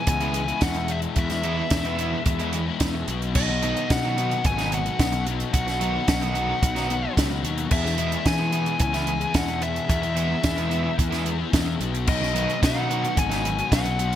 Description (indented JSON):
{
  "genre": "indie rock",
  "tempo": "110 BPM",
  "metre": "4/4",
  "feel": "straight",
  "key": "E major",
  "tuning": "A4 = 440 Hz",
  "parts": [
    { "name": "nasal lead guitar with a parked wah", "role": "melody", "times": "0.0-14.2 s", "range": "D#5 to G#5", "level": "-28 LUFS", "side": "left 1 dB", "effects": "overdrive, ping-pong delay" },
    { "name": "crunchy overdriven guitar", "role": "riff", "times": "0.0-14.2 s", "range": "E2 to G#4", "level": "-28 LUFS", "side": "left 7 dB", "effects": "analog chorus" },
    { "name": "crunchy overdriven guitar", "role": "riff", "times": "0.1-13.9 s", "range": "D#3 to E4", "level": "-32 LUFS", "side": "right 6 dB", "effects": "wide subtle chorus" },
    { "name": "fuzz fingered electric bass", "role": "bass", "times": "0.1-14.2 s", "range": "G#1 to E3", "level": "-28 LUFS", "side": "equal", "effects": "overdrive" },
    { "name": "compact cocktail drum kit", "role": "drums", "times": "0.1-14.2 s", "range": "crash cymbal, hi-hat, kick drum, snare drum", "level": "-25 LUFS", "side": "right 1 dB", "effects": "none" }
  ],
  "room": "moderate plate reverb, RT60 1.6 s, small room ambience",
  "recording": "bright 1980s-style digital production",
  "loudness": "-21 LUFS",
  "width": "side -11 dB against mid",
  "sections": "0.0-14.2 A section",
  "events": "none",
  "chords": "0.0 E; 3.1 B; 7.7 E; 11.8 B",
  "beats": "0.07 0.62 | 1.16 1.71 2.25 2.80 | 3.35 3.89 4.44 4.98 | 5.53 6.08 6.62 7.17 | 7.71 8.26 8.80 9.35 | 9.89 10.44 10.99 11.53 | 12.08 12.62 13.17 13.72"
}